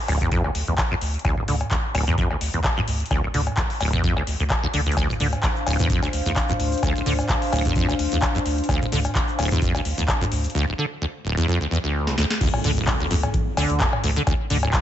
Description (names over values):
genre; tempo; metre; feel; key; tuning
acid house; 129 BPM; 4/4; swing 55% on 16ths; D minor; A4 = 439 Hz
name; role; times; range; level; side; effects
acid bass, saw; riff; 0.1-14.8 s; D1 to D3; -24 LUFS; equal; ensemble chorus, dub echo
saturated sub bass; bass; 0.1-14.7 s; D2; -25 LUFS; equal; sidechain pumping
booming analog drum machine; drums; 0.1-14.8 s; cowbell, crash cymbal, handclaps, hi-hat, snare drum, toms; -26 LUFS; left 1 dB; none
electronic kick drum; drums; 0.2-14.8 s; none; -25 LUFS; equal; none
warm analog pad; sustained chords; 5.0-10.5 s; D4 to F5; -28 LUFS; left 2 dB; chorus, sidechain pumping
egg shaker; percussion; 5.0-10.5 s; none; -41 LUFS; left 3 dB; none
impact; sound effects; 12.4-14.3 s; none; -31 LUFS; equal; none
room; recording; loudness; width
light reverb; nothing above 8.0 kHz; -20 LUFS; side -11 dB against mid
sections
0.0-12.4 A section; 12.4-14.8 B section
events
drum fill 12.1-12.4; drop 12.4-14.8; impact 12.4-14.3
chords
0.0 Dm7; 12.4 N.C.